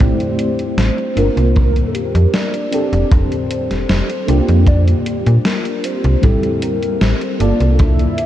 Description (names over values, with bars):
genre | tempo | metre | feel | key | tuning
vaporwave | 77 BPM | 4/4 | straight | unclear | A4 = 440 Hz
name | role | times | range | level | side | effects
warm velvety synth lead | melody | 0.0-8.3 s | G4 to E5 | -22 LUFS | equal | chorus, tremolo, tape echo
mellow FM electric piano | accompaniment | 0.0-8.3 s | G3 to Bb4 | -20 LUFS | equal | tremolo, ensemble chorus, diffuse ambient delay
slap-like FM bass | bass | 0.0-8.1 s | F1 to Bb2 | -14 LUFS | equal | none
gated 80s digital drum machine | drums | 0.0-8.3 s | hi-hat, snare drum | -23 LUFS | left 1 dB | gated reverb, gated reverb snare, small room ambience
kick drum | drums | 0.0-8.0 s | none | -17 LUFS | equal | small room ambience
room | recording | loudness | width
moderate huge ambient reverb, RT60 7.5 s | dreamy mix soaked in reverb, cassette tape | -13 LUFS | side -12 dB against mid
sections
0.0-8.3 A section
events
none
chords
0.0 Am7; 1.2 Gm7; 2.7 F6; 4.3 C9sus4; 6.2 Am7; 7.4 Gm9